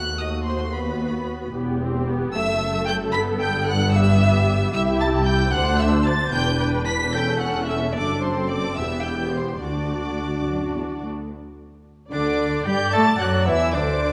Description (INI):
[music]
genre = quick classical-period movement for symphony orchestra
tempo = 74 BPM (dotted quarters)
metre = 6/8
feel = straight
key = E minor, G major from 4.7 s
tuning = A4 = 441 Hz
[part]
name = muted chamber violin section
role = melody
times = 0.0-14.1 s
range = B5 to B6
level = -31 LUFS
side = equal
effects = none
[part]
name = muted symphonic viola section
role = accompaniment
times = 0.0-14.1 s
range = A3 to D5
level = -29 LUFS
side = equal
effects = none
[part]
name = muted chamber cello section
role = bass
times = 0.0-14.1 s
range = C2 to A3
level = -28 LUFS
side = equal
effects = none
[part]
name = muted chamber double bass section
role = bass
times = 0.0-14.1 s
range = E1 to A2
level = -29 LUFS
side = equal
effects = none
[part]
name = muted chamber violin section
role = second line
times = 0.2-14.1 s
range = B4 to B5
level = -31 LUFS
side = equal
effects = none
[part]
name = clear oboe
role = second line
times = 12.1-14.1 s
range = D4 to A4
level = -31 LUFS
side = equal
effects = none
[part]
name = mellow hollow flute section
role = second line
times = 12.1-14.1 s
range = D5 to A5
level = -28 LUFS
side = equal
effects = none
[part]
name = mellow French horn section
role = sustained chords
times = 12.1-14.1 s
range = D3 to A3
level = -28 LUFS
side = equal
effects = none
[sound]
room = moderate scoring stage reverb, RT60 2.2 s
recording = none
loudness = -22 LUFS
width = mono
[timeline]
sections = 0.0-11.3 A section; 11.3-14.1 B section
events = none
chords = 0.0 B7/D#; 1.5 Em; 3.1 Em/G; 4.7 C; 5.5 D9; 6.3 E5; 7.2 A/E; 8.0 D/F#; 8.8 Em; 9.6 D; 11.3 G5; 12.9 D7